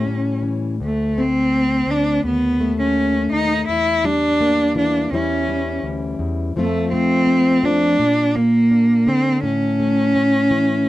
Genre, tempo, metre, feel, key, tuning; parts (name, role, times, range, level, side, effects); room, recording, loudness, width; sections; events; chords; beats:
folk; 83 BPM; 4/4; straight; A4 = 440 Hz
clear cello; melody; 0.0-10.9 s; A3 to E4; -17 LUFS; right 1 dB
fingerpicked plugged-in steel-string acoustic guitar; accompaniment; 0.0-10.9 s; D2 to F4; -21 LUFS; left 2 dB
light reverb; dry, close 1970s-style studio recording; -16 LUFS; side -15 dB against mid
0.0-10.9 A section
0.0 A7; 0.8 Amadd11/D; 2.2 B9/D#; 3.7 Em7b5; 5.1 C#dim; 6.6 F; 8.0 Bb; 9.4 A
0.07 | 0.79 1.52 2.24 2.97 | 3.69 4.41 5.13 5.84 | 6.56 7.28 8.00 8.72 | 9.44 10.16